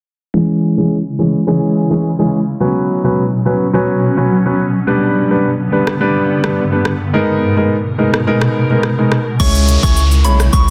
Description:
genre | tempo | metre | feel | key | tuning
dancehall | 106 BPM | 4/4 | straight | unclear | A4 = 442 Hz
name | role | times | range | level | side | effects
warm grand piano | accompaniment | 0.3-10.4 s | E3 to C#5 | -16 LUFS | equal | low-pass filter
granular cloud pad | sustained chords | 1.1-10.7 s | G2 to A#4 | -20 LUFS | equal | built-in reverb, sidechain pumping, low-pass filter
afro-pop drum kit | drums | 5.9-10.7 s | crash cymbal, hi-hat, kick drum, rim click, shaker | -20 LUFS | equal | soft clipping on snare
soft synth bell | melody | 9.4-10.7 s | B5 to C#6 | -22 LUFS | equal | chorus, phaser, tape echo
saturated sub bass | bass | 9.4-10.7 s | B1 to C#2 | -14 LUFS | equal | none
woodblock and cabasa | percussion | 9.4-10.4 s | none | -35 LUFS | equal | none
downlifter | sound effects | 9.4-10.7 s | none | -24 LUFS | equal | none
room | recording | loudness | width
light reverb, digital ambience | dense, heavily limited modern master | -14 LUFS | mono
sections
0.3-9.4 A section; 9.4-10.7 B section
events
filter sweep 0.3-9.4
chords
0.3 C#m; 2.6 Bsus2; 4.9 G; 7.1 G#madd9; 9.4 C#m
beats
| 0.34 0.91 1.48 2.04 | 2.61 3.17 3.74 4.30 | 4.87 5.44 6.00 6.57 | 7.13 7.70 8.27 8.83 | 9.40 9.97 10.53

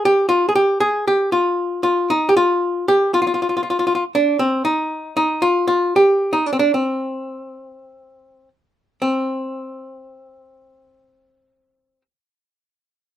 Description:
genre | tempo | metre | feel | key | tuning
turkish | 234 BPM (eighths) | 9/8 | straight | C makam ussak | A4 = 443 Hz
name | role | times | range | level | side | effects
archtop guitar, miked and amplified | solo | 0.0-12.0 s | C4 to Ab4 | -16 LUFS | equal | none
room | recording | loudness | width
moderate small room reverb, RT60 0.5 s | minimal, uncompressed stereo recording | -16 LUFS | side -11 dB against mid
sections
0.0-9.0 A section; 9.0-11.3 B section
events
none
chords
none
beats
0.05 0.30 0.56 0.82 1.07 1.33 1.59 1.84 | 2.10 2.36 2.61 2.87 3.13 3.38 3.64 3.90 4.15 | 4.41 4.67 4.92 5.18 5.43 5.69 5.95 6.20 6.46 | 6.72 6.97 7.23 7.49 7.74 8.00 8.25 8.51 8.77 | 9.02 9.28 9.54 9.79 10.05 10.30 10.56 10.82 11.07

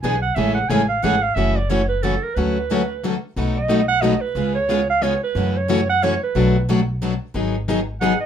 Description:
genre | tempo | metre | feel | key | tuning
acoustic string swing (jazz manouche) | 181 BPM | 3/4 | swing 60% on 8ths | F# minor | A4 = 441 Hz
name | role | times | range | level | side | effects
warm clarinet | second line | 0.0-8.3 s | A4 to G#5 | -21 LUFS | right 4 dB | none
picked plugged-in steel-string acoustic guitar | accompaniment | 0.0-8.1 s | B2 to G#4 | -22 LUFS | left 4 dB | none
picked steel-string acoustic guitar | accompaniment | 0.0-8.1 s | B2 to C#5 | -26 LUFS | right 6 dB | none
upright bass | bass | 0.0-8.1 s | F#1 to F#2 | -24 LUFS | equal | none
room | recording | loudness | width
moderate studio ambience, RT60 0.5 s | minimal, uncompressed stereo recording | -17 LUFS | side -8 dB against mid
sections
0.0-1.4 A section; 1.4-8.3 A section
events
clarinet solo 0.0-8.3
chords
0.4 Amaj7; 1.4 F#m7; 2.4 Dmaj7; 3.4 B7; 4.4 C#7; 5.4 F#m7; 6.3 Bm7; 7.3 G#m7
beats
0.04 | 0.37 0.70 1.03 | 1.37 1.70 2.03 | 2.36 2.70 3.03 | 3.36 3.69 4.03 | 4.36 4.69 5.02 | 5.35 5.69 6.02 | 6.35 6.68 7.01 | 7.35 7.68 8.01

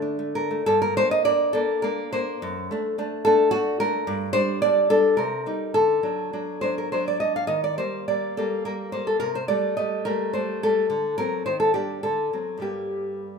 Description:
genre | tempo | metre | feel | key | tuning
romantic piece for solo classical guitar | 93-112 BPM | 3/4 | rubato | G minor | A4 = 440 Hz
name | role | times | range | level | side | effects
nylon-string guitar | solo | 0.0-13.4 s | F#2 to F5 | -21 LUFS | equal | none
room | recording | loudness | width
moderate recital hall reverb, RT60 1.4 s | minimal, uncompressed stereo recording | -21 LUFS | side -5 dB against mid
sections
0.6-13.4 A section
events
none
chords
0.0 D5; 0.6 Gm; 2.4 D7/F#; 4.1 G5; 5.2 Cm; 5.7 D; 7.5 Eb; 9.2 Cm13; 10.9 D7; 11.4 Ebmaj7; 12.0 D7; 12.6 Gm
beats
0.01 | 0.64 1.23 1.82 | 2.40 2.96 3.51 | 4.05 4.60 5.16 | 5.73 6.33 6.93 | 7.50 8.08 8.66 | 9.23 9.78 10.35 | 10.90 11.44 12.00 | 12.60 13.25

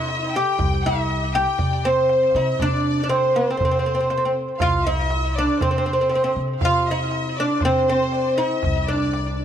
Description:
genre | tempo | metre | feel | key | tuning
Arabic maqam ensemble | 119 BPM | 4/4 | straight | C maqam rast | A4 = 440 Hz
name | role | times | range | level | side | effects
oud | melody | 0.0-9.4 s | Bb3+50c to G4 | -20 LUFS | right 1 dB | tape echo
clear studio violin section | second line | 0.0-9.4 s | Bb4+50c to G5 | -29 LUFS | left 2 dB | none
clear violin | second line | 0.0-9.4 s | Bb4+49c to G5 | -33 LUFS | left 11 dB | none
upright bass | bass | 0.0-9.4 s | C2 to C3 | -26 LUFS | left 1 dB | none
darbuka | percussion | 0.1-9.4 s | none | -28 LUFS | right 2 dB | none
room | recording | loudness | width
moderate echo chamber reverb, RT60 2.0 s | 1960s-style stereo | -18 LUFS | side -9 dB against mid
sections
0.0-9.4 A section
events
none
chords
none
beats
0.08 | 0.58 1.09 1.59 2.09 | 2.59 3.10 3.60 4.10 | 4.61 5.11 5.61 6.12 | 6.62 7.12 7.63 8.13 | 8.63 9.14

